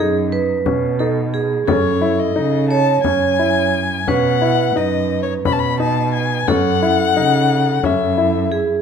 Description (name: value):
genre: contemporary instrumental, chamber music in an uneven meter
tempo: 176 BPM (eighths)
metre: 7/8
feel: straight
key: unclear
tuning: A4 = 440 Hz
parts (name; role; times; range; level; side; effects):
- vibraphone with hard mallets; second line; 0.0-8.8 s; G#4 to C#5; -20 LUFS; right 6 dB; none
- warm baby grand piano; arpeggios; 0.0-8.8 s; C#4 to E4; -21 LUFS; left 5 dB; none
- muted cello; bass; 0.0-8.7 s; F#2 to C#3; -21 LUFS; right 4 dB; none
- frame drum; percussion; 0.7-8.2 s; none; -24 LUFS; left 7 dB; none
- dark violin; melody; 1.7-8.6 s; C#5 to B5; -20 LUFS; left 8 dB; none
room: moderate recital hall reverb, RT60 1.3 s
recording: none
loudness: -14 LUFS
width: side -7 dB against mid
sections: 0.0-8.8 A section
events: none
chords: 0.0 Badd9; 1.7 F#m9; 4.1 Badd9; 6.5 F#m7